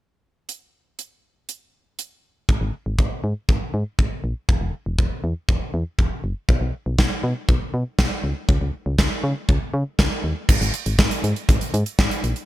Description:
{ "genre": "synth-pop", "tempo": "120 BPM", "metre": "4/4", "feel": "straight", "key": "G# minor", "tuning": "A4 = 441 Hz", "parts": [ { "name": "gated 80s drum kit", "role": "drums", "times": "0.5-12.5 s", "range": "crash cymbal, hi-hat, kick drum, snare drum", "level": "-20 LUFS", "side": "equal", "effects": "gated reverb" }, { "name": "solid FM bass", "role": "bass", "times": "2.5-12.3 s", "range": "E1 to C#3", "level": "-23 LUFS", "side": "equal", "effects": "none" } ], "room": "little or no reverb", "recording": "bright 1980s-style digital production", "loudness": "-20 LUFS", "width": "side -15 dB against mid", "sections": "0.5-2.5 A section; 2.5-10.5 B section; 10.5-12.5 C section", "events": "none", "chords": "none" }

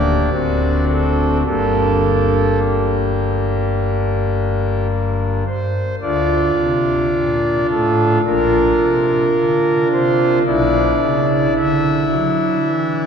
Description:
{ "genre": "classical, chorale-style piece for pipe organ", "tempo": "54 BPM", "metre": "4/4", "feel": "straight", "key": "G minor, D minor from 6.0 s", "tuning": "A4 = 436 Hz", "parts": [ { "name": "pipe organ, foundations", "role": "solo", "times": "0.0-13.1 s", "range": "D1 to E5", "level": "-14 LUFS", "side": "equal", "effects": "none" } ], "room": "wet cathedral reverb, RT60 4.7 s", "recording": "heard from further back in the room", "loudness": "-14 LUFS", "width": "side -7 dB against mid", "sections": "0.0-6.0 A section; 6.0-13.1 B section", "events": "none", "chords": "0.3 D7; 1.5 Gm; 6.0 Dm; 8.3 Bb; 10.5 E5/B" }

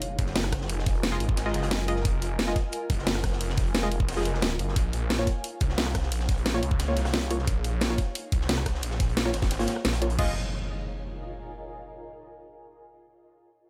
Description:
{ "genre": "dark technical drum and bass", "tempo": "177 BPM", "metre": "4/4", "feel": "straight", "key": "F phrygian", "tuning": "A4 = 440 Hz", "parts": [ { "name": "crunchy breakbeat drum kit", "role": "drums", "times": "0.0-10.2 s", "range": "hi-hat, snare drum", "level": "-42 LUFS", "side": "equal", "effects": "high-pass filter on hats, high-pass filter on snare, high-pass filter on room" }, { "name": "drum and bass drum kit", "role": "drums", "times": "0.0-10.3 s", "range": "crash cymbal, hi-hat, rim click, snare drum", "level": "-31 LUFS", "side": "equal", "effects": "none" }, { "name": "impact", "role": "sound effects", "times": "0.0-0.7, 10.2-11.5 s", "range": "none", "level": "-39 LUFS", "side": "equal", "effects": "none" }, { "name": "granular cloud pad", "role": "texture", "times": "0.0-11.5 s", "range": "Eb4 to Ab5", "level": "-42 LUFS", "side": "equal", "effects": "built-in reverb, sidechain pumping" }, { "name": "snarling distorted saw bass", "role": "bass", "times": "0.2-10.3 s", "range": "F1 to Db2", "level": "-32 LUFS", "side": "equal", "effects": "distortion, overdrive, sidechain pumping" }, { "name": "electronic kick drum", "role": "drums", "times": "0.2-10.3 s", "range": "none", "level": "-29 LUFS", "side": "equal", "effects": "none" }, { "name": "band-passed chord stab", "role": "stabs", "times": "1.1-10.3 s", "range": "Ab3 to Eb5", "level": "-35 LUFS", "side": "equal", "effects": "chorus, dub echo" } ], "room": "digital ambience", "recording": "none", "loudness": "-27 LUFS", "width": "mono", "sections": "0.0-10.2 A section; 10.2-11.5 B section", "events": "fade-out on ambient pad 0.0-10.2; impact 0.0-0.7; filter sweep on synth stab 0.0-10.2", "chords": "0.0 Fm7; 4.8 Bbm; 10.2 Fm7" }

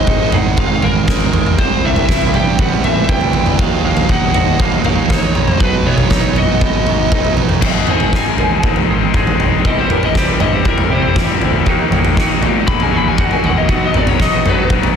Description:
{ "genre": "quiet-loud alternative rock", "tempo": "119 BPM", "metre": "4/4", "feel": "straight", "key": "unclear", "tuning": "A4 = 444 Hz", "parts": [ { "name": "lead guitar through a small cranked amp", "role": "melody", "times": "0.0-14.7 s", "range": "Bb4 to Cb6", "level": "-20 LUFS", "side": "left 4 dB", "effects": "overdrive, plate reverb, digital delay" }, { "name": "twangy electric guitar", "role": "arpeggios", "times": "0.0-15.0 s", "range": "Ab2 to Ab4", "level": "-22 LUFS", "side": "right 6 dB", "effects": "lush chorus, plate reverb, digital delay" }, { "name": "thick fuzz guitar", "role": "riff", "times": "0.0-7.6 s", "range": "Ab2 to E4", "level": "-19 LUFS", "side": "right 10 dB", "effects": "distortion" }, { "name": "fuzz picked electric bass", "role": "bass", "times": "0.1-14.9 s", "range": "Ab1 to C3", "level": "-21 LUFS", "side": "left 1 dB", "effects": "overdrive" }, { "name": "oversized low-tuned drum kit", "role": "drums", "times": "0.1-14.9 s", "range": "crash cymbal, kick drum, snare drum, toms", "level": "-15 LUFS", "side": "equal", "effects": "none" }, { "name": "cranked stack guitar", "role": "riff", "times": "7.6-15.0 s", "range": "Ab2 to E4", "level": "-19 LUFS", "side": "left 13 dB", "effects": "overdrive" } ], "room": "light reverb", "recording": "dense, heavily limited modern master", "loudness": "-12 LUFS", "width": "side -7 dB against mid", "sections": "0.0-7.6 A section; 7.6-15.0 B section", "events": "lead electric guitar solo 7.6-15.0", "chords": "0.0 Ab; 1.6 C; 3.6 Ebm; 5.6 B; 7.6 Ab; 9.7 C; 11.7 Ebm; 13.7 B" }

